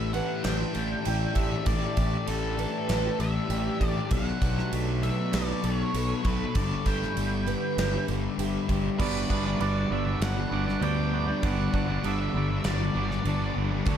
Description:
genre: rock, shoegaze and dream pop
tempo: 98 BPM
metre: 4/4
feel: straight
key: G lydian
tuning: A4 = 440 Hz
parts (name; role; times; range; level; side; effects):
- octave-fuzz lead guitar; melody; 0.0-13.5 s; A4 to G5; -36 LUFS; left 2 dB; distortion, slapback echo
- deep dark ambient pad; sustained chords; 0.0-14.0 s; G4 to D6; -38 LUFS; left 2 dB; chorus, built-in reverb
- picked twelve-string acoustic guitar; arpeggios; 0.0-14.0 s; F#4 to B4; -37 LUFS; right 13 dB; analog chorus, slapback echo
- thick fuzz guitar; riff; 0.0-14.0 s; G2 to D4; -31 LUFS; left 8 dB; distortion, lush chorus
- twangy electric guitar; riff; 0.0-14.0 s; A2 to D5; -34 LUFS; right 10 dB; reverse reverb
- fuzz fingered electric bass; bass; 0.0-14.0 s; G1 to D2; -30 LUFS; right 1 dB; overdrive
- gated 80s drum kit; drums; 0.1-14.0 s; crash cymbal, kick drum, snare drum; -32 LUFS; right 1 dB; none
- tambourine; percussion; 0.1-8.8 s; none; -49 LUFS; right 16 dB; none
- distorted electric guitar; riff; 9.0-14.0 s; G2 to D4; -35 LUFS; right 1 dB; distortion
room: small room ambience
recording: dark, warm production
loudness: -25 LUFS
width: side -9 dB against mid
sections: 0.0-9.0 A section; 9.0-14.0 B section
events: none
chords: 0.0 A7sus4; 4.1 Bm9; 6.6 G6; 9.0 Gmaj7

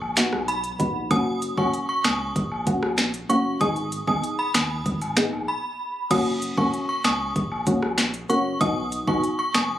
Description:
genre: dancehall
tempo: 96 BPM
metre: 4/4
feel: straight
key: F# major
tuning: A4 = 439 Hz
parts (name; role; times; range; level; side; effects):
- round analog bass; bass; 0.0-9.8 s; F#1 to D#2; -32 LUFS; equal; none
- woodblock and cabasa; percussion; 0.0-9.7 s; none; -33 LUFS; left 1 dB; none
- deep mellow chord stab; accompaniment; 0.2-9.3 s; A#3 to G#4; -25 LUFS; equal; chorus, sidechain pumping
- afro-pop drum kit; drums; 0.2-9.7 s; crash cymbal, finger snaps, hi-hat, kick drum, rim click, snare drum; -25 LUFS; equal; none
- synth chime; melody; 0.5-9.6 s; B5 to D#6; -26 LUFS; right 1 dB; ensemble chorus, tape echo
room: little or no reverb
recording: recorded on a phone in the room, club reverb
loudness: -21 LUFS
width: side -12 dB against mid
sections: 0.0-6.1 A section; 6.1-9.8 A section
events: break 5.5-6.1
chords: 0.0 B; 1.1 F#; 3.6 G#m; 6.1 F#; 8.6 B

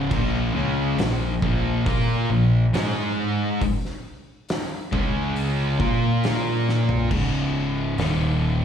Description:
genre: stoner and doom metal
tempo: 69 BPM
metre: 4/4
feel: straight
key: unclear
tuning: A4 = 439 Hz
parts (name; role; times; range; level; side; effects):
- sludgy distorted guitar; riff; 0.0-7.1 s; C#2 to A#4; -28 LUFS; equal; overdrive, slapback echo
- thick fuzz guitar; riff; 0.0-8.6 s; C#2 to A#4; -25 LUFS; left 5 dB; distortion
- thick fuzz guitar; riff; 0.0-8.6 s; C#2 to A#4; -26 LUFS; right 7 dB; distortion
- fuzz fingered electric bass; bass; 0.0-8.6 s; C#1 to A#2; -26 LUFS; equal; overdrive
- oversized low-tuned drum kit; drums; 0.1-8.2 s; crash cymbal, hi-hat, kick drum, snare drum, toms; -28 LUFS; equal; none
room: light reverb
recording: live gig heard through the venue's PA, club reverb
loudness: -20 LUFS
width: side -8 dB against mid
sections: 0.0-7.1 A section; 7.1-8.6 B section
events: drum fill 6.7-7.1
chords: 0.1 A#5; 2.7 G#5; 4.9 C#5; 5.8 A#5; 7.1 C#5; 8.0 D#5

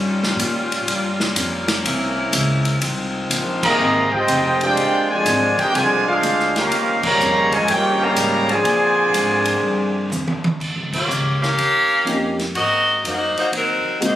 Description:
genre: jazz, big band swing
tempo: 123 BPM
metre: 4/4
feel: swing 66% on 8ths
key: unclear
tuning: A4 = 440 Hz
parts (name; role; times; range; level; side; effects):
- warm saxophone section; sustained chords; 0.0-10.6 s; C3 to Ab4; -26 LUFS; left 1 dB; none
- upright bass; bass; 0.0-14.2 s; F1 to Bb2; -25 LUFS; equal; none
- swinging big-band drum kit; drums; 0.2-14.2 s; crash cymbal, hi-hat, kick drum, ride cymbal, snare drum, toms; -24 LUFS; equal; none
- warm trumpet section; melody; 3.6-10.1 s; Db4 to Bb5; -18 LUFS; right 1 dB; none
- brilliant trombone section; second line; 3.6-10.1 s; C3 to Ab4; -21 LUFS; equal; none
- edgy saxophone section; melody; 10.9-14.2 s; Gb3 to F5; -18 LUFS; equal; none
- warm concert grand piano; accompaniment; 12.1-14.2 s; Ab3 to G4; -22 LUFS; left 1 dB; none
room: moderate large studio reverb, RT60 1.2 s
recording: recorded on a phone in the room, studio ambience, compression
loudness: -16 LUFS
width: side -12 dB against mid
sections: 0.0-10.6 A section; 10.6-14.2 B section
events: band accent 3.5, 6.9, 10.8; drum fill 10.1-10.6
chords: 0.0 Eb9; 0.9 Gm7b5; 1.8 C7b9; 2.8 Fm7; 4.8 Bb9; 6.7 Eb9; 8.6 Bb9; 10.6 Eb9; 12.5 Ab9

